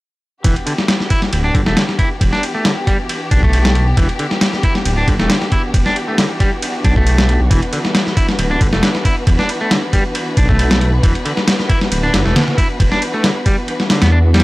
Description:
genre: breakbeat, breaks.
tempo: 136 BPM.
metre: 4/4.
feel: swing 54% on 16ths.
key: E minor.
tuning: A4 = 440 Hz.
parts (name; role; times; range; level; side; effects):
warm studio string section; sustained chords; 0.4-14.4 s; E3 to B4; -23 LUFS; left 1 dB; sidechain pumping.
clean electric guitar; riff; 0.4-14.4 s; D3 to E4; -20 LUFS; equal; vintage 12-bit sampler grit, analog delay.
detuned saw bass; bass; 0.4-14.4 s; D1 to E2; -15 LUFS; equal; none.
dusty soul sampler-style drum kit; drums; 0.4-14.4 s; kick drum, ride cymbal, snare drum; -15 LUFS; equal; overdrive.
room: little or no reverb.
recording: dry, gritty hardware recording, cassette tape.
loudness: -12 LUFS.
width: side -20 dB against mid.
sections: 0.4-14.4 A section.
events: none.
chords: 0.4 Em7.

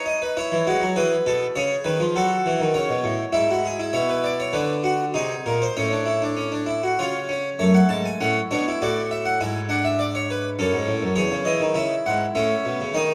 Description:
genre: classical, baroque-style 3-part fugue for harpsichord.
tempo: 100 BPM.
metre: 3/4.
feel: straight.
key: E major, F# minor from 3.9 s.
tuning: A4 = 442 Hz.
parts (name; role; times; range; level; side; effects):
harpsichord; solo; 0.0-13.1 s; E2 to A5; -22 LUFS; equal; none.
room: wet recital hall reverb, RT60 1.7 s.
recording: dark, warm production.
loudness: -22 LUFS.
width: mono.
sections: 0.0-3.9 A section; 3.9-7.6 B section; 7.6-13.1 C section.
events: none.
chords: 0.4 E; 1.6 C#7; 2.1 F#m; 3.3 E/G#; 3.9 Bmadd11; 5.2 G#/B#; 5.8 F#m/A; 7.0 C#; 7.6 F#m; 8.8 D/A; 9.4 G#dim; 10.6 F#m; 11.2 C#m/E; 12.3 A.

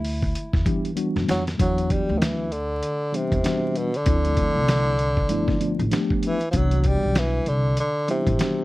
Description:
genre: hip hop, jazz-hop.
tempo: 97 BPM.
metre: 4/4.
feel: swing 59% on 16ths.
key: E minor.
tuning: A4 = 440 Hz.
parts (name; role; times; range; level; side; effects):
breathy tenor saxophone; melody; 0.0-8.6 s; B2 to E4; -25 LUFS; equal; none.
upright bass; bass; 0.0-8.4 s; G1 to E3; -25 LUFS; equal; none.
dusty soul sampler-style drum kit; drums; 0.0-8.6 s; hi-hat, kick drum, snare drum; -25 LUFS; equal; none.
mellow tine electric piano; accompaniment; 0.6-8.6 s; E3 to G4; -26 LUFS; left 1 dB; medium stereo tremolo.
room: little or no reverb.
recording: dry, close 1970s-style studio recording, vinyl crackle.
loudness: -20 LUFS.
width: side -18 dB against mid.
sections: 0.0-1.6 A section; 1.6-8.6 A section.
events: drum fill 1.0-1.6.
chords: 0.0 Em9; 4.1 Dm7; 5.3 G13; 6.5 Cmaj9#11.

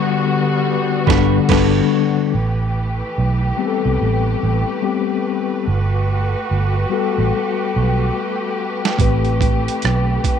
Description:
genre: R&B, neo-soul.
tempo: 72 BPM.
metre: 4/4.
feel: swing 61% on 16ths.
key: A dorian.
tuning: A4 = 440 Hz.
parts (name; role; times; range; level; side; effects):
mellow tine electric piano; accompaniment; 0.0-10.4 s; D3 to B4; -19 LUFS; left 10 dB; medium stereo tremolo.
muted studio string section; sustained chords; 0.0-10.4 s; D3 to B4; -23 LUFS; equal; none.
electric guitar through a small old amp; second line; 1.1-1.8 s; D4 to B4; -23 LUFS; right 12 dB; none.
vintage muted fingered electric bass; bass; 1.1-10.2 s; G1 to C2; -18 LUFS; right 2 dB; none.
boom bap sampler-style drum kit; drums; 1.1-1.8, 8.9-10.4 s; crash cymbal, hi-hat, kick drum, rim click, snare drum; -20 LUFS; right 5 dB; none.
room: moderate spring reverb, RT60 1.9 s, digital ambience.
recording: 1960s-style stereo with parts hard left and right.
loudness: -15 LUFS.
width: side -8 dB against mid.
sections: 0.0-2.3 A section; 2.3-10.4 B section.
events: band accent 0.0-2.3; silent gap 0.7-2.3; drum fill 8.2-9.0.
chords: 0.0 Gmaj7; 2.3 Am9; 5.7 Gmaj9; 9.0 Am9.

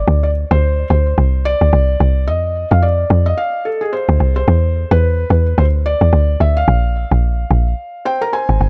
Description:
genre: amapiano.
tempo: 109 BPM.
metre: 4/4.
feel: swing 58% on 16ths.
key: unclear.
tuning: A4 = 440 Hz.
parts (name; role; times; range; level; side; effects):
felt-muted upright piano; melody; 0.0-8.7 s; G#4 to Bb5; -21 LUFS; equal; digital delay.
woody log drum bass; bass; 0.0-8.7 s; G1 to F2; -15 LUFS; equal; none.
room: small room reverb.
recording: none.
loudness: -15 LUFS.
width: mono.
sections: 0.0-8.7 A section.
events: none.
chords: 0.1 Csus2; 2.3 F5; 4.5 D7sus2; 6.7 Bb5.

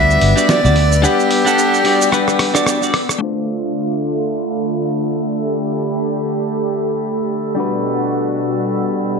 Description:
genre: sunset chillout.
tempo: 110 BPM.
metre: 4/4.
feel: swing 57% on 16ths.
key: unclear.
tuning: A4 = 440 Hz.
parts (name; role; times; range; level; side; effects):
bright soprano saxophone; melody; 0.0-2.7 s; G4 to E5; -16 LUFS; equal; ping-pong delay, slapback echo.
clean electric guitar; accompaniment; 0.0-9.2 s; G3 to F#5; -20 LUFS; moving between left 6 dB and right 3 dB; auto-pan, low-pass filter, ping-pong delay, slapback echo.
lush unison pad; sustained chords; 0.0-9.2 s; B2 to G4; -20 LUFS; equal; chorus.
fretless electric bass; bass; 0.0-1.0 s; G1 to D2; -14 LUFS; equal; tube saturation, analog chorus.
drifting glass-harmonics texture; texture; 0.0-9.2 s; A4 to E6; -27 LUFS; equal; chorus, built-in reverb.
dusty soul sampler-style drum kit; drums; 0.1-3.2 s; cabasa, hi-hat, rim click, snare drum; -20 LUFS; right 1 dB; low-pass filter on perc, studio reverb, low-pass filter on hats, low-pass filter on snare.
room: wet lush hall reverb, RT60 2.1 s.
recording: big arena sound, low-pass filter.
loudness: -14 LUFS.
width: side -5 dB against mid.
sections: 0.0-3.2 A section; 3.2-9.2 B section.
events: break 1.0-3.2; drum fill 2.1-3.2; filter sweep on clean electric guitar 3.2-9.2; filter sweep 3.2-9.2.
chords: 0.0 Gmaj7; 3.2 F6; 7.6 Gmaj7.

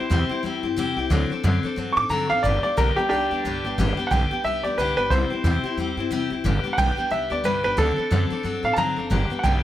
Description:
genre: rockabilly.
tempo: 180 BPM.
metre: 4/4.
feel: swing 60% on 8ths.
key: G major.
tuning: A4 = 437 Hz.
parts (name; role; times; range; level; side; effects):
clear upright piano; melody; 0.0-9.6 s; D4 to D6; -24 LUFS; right 1 dB; tape echo.
picked steel-string acoustic guitar; accompaniment; 0.0-9.6 s; G2 to A4; -25 LUFS; left 4 dB; none.
upright bass; bass; 0.1-9.6 s; F#1 to A2; -25 LUFS; right 1 dB; none.
room: light reverb.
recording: none.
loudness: -20 LUFS.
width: side -12 dB against mid.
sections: 0.0-3.8 A section; 3.8-9.6 A section.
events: none.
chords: 0.0 C; 1.1 D7; 2.4 G; 5.1 C; 6.4 G; 7.8 D7; 9.1 G.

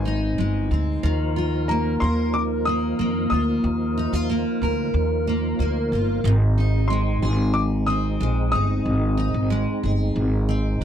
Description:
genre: acoustic pop.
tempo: 92 BPM.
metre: 4/4.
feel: straight.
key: unclear.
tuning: A4 = 439 Hz.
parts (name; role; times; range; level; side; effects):
picked steel-string acoustic guitar; accompaniment; 0.0-10.8 s; Ab2 to Bb4; -24 LUFS; right 1 dB; double-tracked left and right.
warm baby grand piano; accompaniment; 0.0-1.1 s; Eb4 to Ab5; -37 LUFS; left 7 dB; none.
upright bass; bass; 0.0-10.8 s; G1 to F2; -23 LUFS; equal; none.
percussive tonewheel organ; sustained chords; 1.0-10.8 s; F3 to Bb4; -32 LUFS; right 1 dB; overdrive, chorus vibrato, slow rotary speaker.
warm upright piano; melody; 1.7-9.5 s; Bb5 to Eb6; -27 LUFS; left 3 dB; none.
room: little or no reverb.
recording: dry, close 1970s-style studio recording.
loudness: -20 LUFS.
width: side -9 dB against mid.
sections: 0.0-1.0 A section; 1.0-10.8 B section.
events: none.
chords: 0.0 Ab; 1.0 Ebsus2; 6.2 Ab.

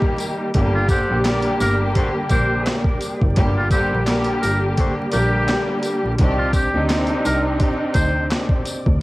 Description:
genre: hip hop, boom-bap hip-hop.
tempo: 85 BPM.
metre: 4/4.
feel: swing 54% on 16ths.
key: G minor.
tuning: A4 = 440 Hz.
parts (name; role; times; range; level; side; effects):
warm studio string section; accompaniment; 0.0-8.7 s; D3 to G4; -22 LUFS; equal; high-pass filter, low-pass filter, cassette tape, plate reverb.
tonewheel organ; sustained chords; 0.0-9.0 s; C3 to D5; -28 LUFS; equal; none.
boom bap sampler-style drum kit; drums; 0.0-9.0 s; handclaps, hi-hat, kick drum, snare drum; -21 LUFS; equal; none.
tambourine; percussion; 0.2-8.8 s; none; -35 LUFS; left 3 dB; none.
clear double bass; bass; 0.6-9.0 s; F#1 to D2; -22 LUFS; equal; transformer saturation.
trumpet with metal mute; melody; 0.7-8.3 s; F4 to C5; -25 LUFS; equal; high-pass filter, low-pass filter, cassette tape.
clear saxophone section; stabs; 0.9-5.4 s; D4 to F#5; -29 LUFS; left 1 dB; high-pass filter, low-pass filter, cassette tape, analog delay, plate reverb.
room: light reverb.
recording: home recording on cassette, vinyl crackle.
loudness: -17 LUFS.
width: side -20 dB against mid.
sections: 0.5-9.0 A section.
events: break 0.0-0.5.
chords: 0.0 Eb; 0.5 Gm; 6.2 Cmadd9.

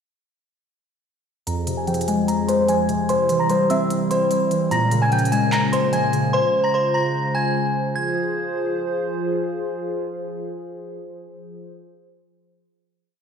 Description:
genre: hip hop, trap.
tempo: 148 BPM.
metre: 4/4.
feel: half-time.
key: F harmonic minor.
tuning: A4 = 440 Hz.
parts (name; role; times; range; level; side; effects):
delicate synth tine bell; melody; 1.5-9.1 s; C5 to Bb6; -21 LUFS; left 1 dB; chorus, low-pass filter, ping-pong delay.
warbly lo-fi synth keys; accompaniment; 1.5-6.4 s; F2 to C4; -22 LUFS; left 1 dB; chorus, low-pass filter.
hollow soft pad; sustained chords; 1.5-11.7 s; F2 to C5; -25 LUFS; right 1 dB; chorus, low-pass filter.
trap drum kit; drums; 1.5-6.2 s; handclaps, hi-hat; -33 LUFS; right 2 dB; overdrive.
room: moderate concert hall reverb, RT60 2.1 s.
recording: played on a big sound system in a bare room, stone room reverb.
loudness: -18 LUFS.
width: side -7 dB against mid.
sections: 1.5-8.0 breakdown; 8.0-11.2 final chord.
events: filter sweep 1.5-8.0.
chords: 1.5 Fm; 3.1 C; 4.7 Bbm7; 6.3 Dbmaj7; 8.0 Fm.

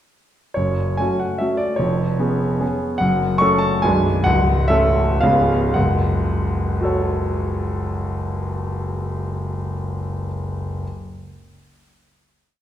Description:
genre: classical, romantic triple-time dance for piano with dotted rhythms.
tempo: 106-160 BPM.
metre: 3/4.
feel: rubato.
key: F# minor.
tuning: A4 = 440 Hz.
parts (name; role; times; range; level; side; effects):
warm concert grand piano; solo; 0.5-10.8 s; B0 to C#6; -18 LUFS; equal; none.
room: wet recital hall reverb, RT60 1.4 s.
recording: heard from further back in the room.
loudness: -18 LUFS.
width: side -11 dB against mid.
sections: 0.5-5.8 A section; 5.8-8.8 final chord.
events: slowing down 2.4-5.8.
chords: 0.5 F#m; 1.8 C#7/E#; 3.0 F#m; 3.8 G#dim/B; 4.3 F#m/C#; 5.2 C#7; 5.8 F#m.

